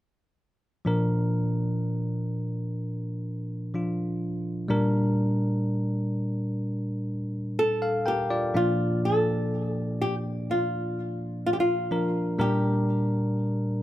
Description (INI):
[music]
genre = pop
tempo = 62 BPM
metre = 4/4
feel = straight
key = Bb major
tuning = A4 = 439 Hz
[part]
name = bell-like tine electric piano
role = accompaniment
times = 0.8-13.8 s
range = Bb2 to G5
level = -26 LUFS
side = equal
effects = none
[part]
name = flamenco guitar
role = melody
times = 7.6-13.8 s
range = F4 to A4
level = -27 LUFS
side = equal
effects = none
[sound]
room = moderate plate reverb, RT60 2.6 s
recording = none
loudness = -25 LUFS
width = side -14 dB against mid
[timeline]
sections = 0.9-8.5 A section; 8.5-13.8 B section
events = none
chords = 0.9 Bb; 4.7 Gm/Bb; 8.5 Bb; 12.4 Gm/Bb